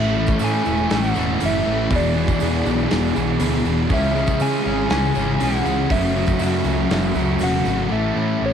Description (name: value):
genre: rock, shoegaze and dream pop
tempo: 120 BPM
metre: 4/4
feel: straight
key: unclear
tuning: A4 = 438 Hz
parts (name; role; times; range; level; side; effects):
- soft struck synth lead; melody; 0.0-8.5 s; C#5 to G#5; -25 LUFS; equal; chorus, cassette tape, analog delay
- cranked stack guitar; riff; 0.0-8.5 s; E2 to C#4; -27 LUFS; equal; overdrive, spring reverb, cassette tape
- crunchy overdriven guitar; riff; 0.0-8.5 s; A2 to A4; -24 LUFS; right 12 dB; reverse reverb, cassette tape
- thick fuzz guitar; riff; 0.0-8.5 s; E2 to C#4; -23 LUFS; left 9 dB; distortion, wide subtle chorus, cassette tape
- growling picked electric bass; bass; 0.0-8.5 s; E1 to C#3; -25 LUFS; equal; overdrive
- tambourine; percussion; 0.0-7.8 s; none; -44 LUFS; right 17 dB; none
- loose indie drum kit; drums; 0.3-7.5 s; hi-hat, kick drum, snare drum; -26 LUFS; equal; none
room: light reverb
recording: home recording on cassette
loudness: -17 LUFS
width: side -8 dB against mid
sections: 0.0-7.9 A section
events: none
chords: 0.0 F#m7; 1.9 E7; 3.9 C#m; 5.9 F#m7; 7.9 A